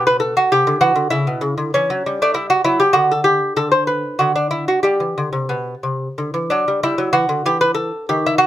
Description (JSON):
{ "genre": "classical, baroque-style dance for lute", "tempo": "90-100 BPM", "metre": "3/4", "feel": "rubato", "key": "G major", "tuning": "A4 = 443 Hz", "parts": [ { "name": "lute", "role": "solo", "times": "0.0-8.5 s", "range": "B2 to C5", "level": "-15 LUFS", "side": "equal", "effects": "none" } ], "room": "little or no reverb", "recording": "close, detailed microphones", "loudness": "-15 LUFS", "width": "side -12 dB against mid", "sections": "0.0-6.8 A section; 6.8-8.5 A section", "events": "none", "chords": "0.5 Cadd9; 1.1 A7 (rootless); 3.0 N.C.; 4.9 G; 6.8 Em" }